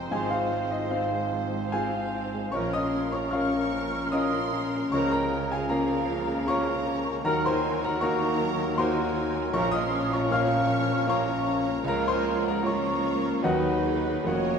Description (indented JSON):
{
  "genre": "classical, romantic movement for piano and orchestra",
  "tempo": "77 BPM",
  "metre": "3/4",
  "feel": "rubato",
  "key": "Bb minor from 7.3 s",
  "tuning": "A4 = 439 Hz",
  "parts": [
    { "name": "clear grand piano", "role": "melody", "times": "0.0-14.6 s", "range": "F1 to F6", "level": "-28 LUFS", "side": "left 1 dB", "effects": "none" },
    { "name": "rich studio violin section", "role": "melody", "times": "0.0-14.6 s", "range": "Bb4 to Db5", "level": "-37 LUFS", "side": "left 5 dB", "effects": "none" },
    { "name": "clear oboe", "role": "second line", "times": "0.0-14.6 s", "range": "Bb4 to Db5", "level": "-40 LUFS", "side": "right 1 dB", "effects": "none" },
    { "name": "large flute ensemble", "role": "second line", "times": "0.0-14.6 s", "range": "Eb5 to F6", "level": "-35 LUFS", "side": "right 1 dB", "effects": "none" },
    { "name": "mellow clarinet", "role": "second line", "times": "0.0-14.6 s", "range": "C4 to Eb4", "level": "-34 LUFS", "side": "left 4 dB", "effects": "none" },
    { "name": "rich studio violin section", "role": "second line", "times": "0.0-14.6 s", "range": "C5 to Db6", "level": "-39 LUFS", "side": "left 1 dB", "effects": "none" },
    { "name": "rich studio viola section", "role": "accompaniment", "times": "0.0-14.6 s", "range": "F3 to Bb4", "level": "-35 LUFS", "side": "right 2 dB", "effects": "none" },
    { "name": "warm bassoon", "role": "accompaniment", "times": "0.0-14.6 s", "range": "F3 to Bb3", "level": "-36 LUFS", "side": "right 2 dB", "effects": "none" },
    { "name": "rich studio cello section", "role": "bass", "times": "0.0-14.6 s", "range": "Db2 to Eb3", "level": "-36 LUFS", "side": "right 2 dB", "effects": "none" },
    { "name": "rich studio double bass section", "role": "bass", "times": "0.0-14.6 s", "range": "F1 to Eb2", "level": "-37 LUFS", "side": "right 6 dB", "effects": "none" },
    { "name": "mellow French horn section", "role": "sustained chords", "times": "0.1-14.6 s", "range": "F3 to D#4", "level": "-36 LUFS", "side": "left 4 dB", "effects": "none" },
    { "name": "dark trumpet section", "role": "stabs", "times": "0.1-14.6 s", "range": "Bb4 to Db5", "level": "-36 LUFS", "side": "right 2 dB", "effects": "none" }
  ],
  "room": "wet recital hall reverb, RT60 1.3 s",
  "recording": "minimal, uncompressed stereo recording",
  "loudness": "-24 LUFS",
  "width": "side -6 dB against mid",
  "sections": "0.0-14.6 A section",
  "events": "none",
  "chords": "0.1 Fm/Ab; 2.5 Bbm; 4.9 Bbm/Db; 7.3 Ebm; 9.6 Bbm; 11.9 Bbm/Db; 13.4 B/D#"
}